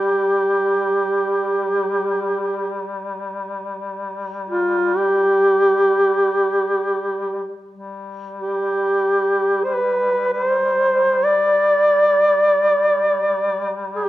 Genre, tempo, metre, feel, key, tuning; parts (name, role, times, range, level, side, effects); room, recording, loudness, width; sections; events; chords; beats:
caucasian folk, Caucasian lament; free time; G major; A4 = 441 Hz
mellow duduk; melody; 0.0-14.1 s; F4 to D5; -16 LUFS; equal
warm duduk; drone; 0.0-14.1 s; G3; -28 LUFS; left 3 dB
wet recital hall reverb, RT60 1.4 s; dark, warm production; -16 LUFS; side -15 dB against mid
0.0-7.7 A section; 7.7-14.1 A section
free time